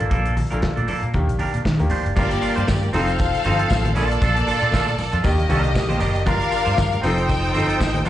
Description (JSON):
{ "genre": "disco", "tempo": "117 BPM", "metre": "4/4", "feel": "swing 56% on 16ths", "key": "unclear", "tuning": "A4 = 440 Hz", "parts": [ { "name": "clean electric guitar", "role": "accompaniment", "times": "0.0-8.1 s", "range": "Bb3 to C5", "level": "-26 LUFS", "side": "right 4 dB", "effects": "slapback echo" }, { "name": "clear grand piano", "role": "accompaniment", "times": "0.0-8.1 s", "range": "Bb2 to Bb4", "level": "-27 LUFS", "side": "left 3 dB", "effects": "slapback echo" }, { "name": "vintage muted fingered electric bass", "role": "bass", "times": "0.0-8.1 s", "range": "F1 to Eb3", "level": "-22 LUFS", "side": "equal", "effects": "none" }, { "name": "modern studio drum kit", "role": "drums", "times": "0.0-8.1 s", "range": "crash cymbal, hi-hat, kick drum, snare drum", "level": "-25 LUFS", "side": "equal", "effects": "none" }, { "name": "congas", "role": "percussion", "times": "0.1-8.1 s", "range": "none", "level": "-29 LUFS", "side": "left 2 dB", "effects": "none" }, { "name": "clear symphonic string section", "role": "second line", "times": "2.2-8.1 s", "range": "Bb3 to G5", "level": "-23 LUFS", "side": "left 1 dB", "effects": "slapback echo" }, { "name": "tambourine", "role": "percussion", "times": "2.2-8.1 s", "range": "none", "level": "-41 LUFS", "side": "right 3 dB", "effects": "none" } ], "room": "light reverb", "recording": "live gig heard through the venue's PA, club reverb, nothing above 10.3 kHz", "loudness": "-18 LUFS", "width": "side -13 dB against mid", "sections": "0.0-2.2 A section; 2.2-8.1 B section", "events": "none", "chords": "0.0 Bbmaj7; 1.1 Ebmaj7; 2.2 Gm7; 2.9 F7; 4.0 Bbmaj7; 5.2 Ebmaj7; 6.3 Gm7; 7.0 F7" }